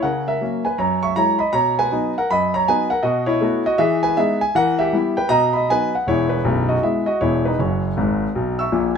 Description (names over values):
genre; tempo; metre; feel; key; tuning
jazz, stride piano; 159 BPM; 4/4; swing 63% on 8ths; B major; A4 = 440 Hz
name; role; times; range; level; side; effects
warm concert grand piano; solo; 0.0-9.0 s; B0 to E6; -17 LUFS; equal; none
room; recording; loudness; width
moderate stone room reverb, RT60 1.1 s; band playing live in one room; -17 LUFS; side -6 dB against mid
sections
0.0-9.0 A section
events
grand piano fill 8.0-9.0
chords
0.0 F#7/C#; 0.8 F#sus2; 1.5 B; 3.0 B5; 3.8 Emaj7; 4.6 Em; 5.3 B; 6.1 E; 7.6 F#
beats
| 0.03 0.41 0.79 1.16 | 1.54 1.92 2.29 2.67 | 3.05 3.43 3.80 4.18 | 4.56 4.94 5.32 5.70 | 6.07 6.45 6.83 7.21 | 7.59 7.97 8.35 8.73